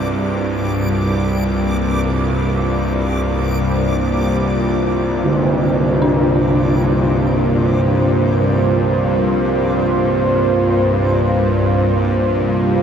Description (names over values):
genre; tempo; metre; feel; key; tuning
dark ambient drone; free time; none; none; unclear; A4 = 440 Hz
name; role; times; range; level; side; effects
deep dark ambient pad; sustained chords; 0.0-12.8 s; C3 to G5; -18 LUFS; equal; chorus, built-in reverb
dark detuned synth bell; arpeggios; 0.0-12.8 s; D4 to Ab4; -28 LUFS; left 2 dB; none
bowed-like drone; drone; 0.0-12.8 s; C2 to G2; -18 LUFS; equal; built-in reverb
backwards swelling texture; texture; 0.0-12.8 s; D6; -32 LUFS; right 2 dB; built-in reverb
tam-tam; percussion; 5.2-5.5 s; none; -22 LUFS; right 2 dB; low-pass filter on cymbals
room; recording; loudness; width
wet huge ambient reverb, RT60 7.7 s; none; -14 LUFS; side -8 dB against mid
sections
0.0-12.8 A section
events
fade-out on synth texture 0.0-12.8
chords
0.0 Bbadd9/C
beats
free time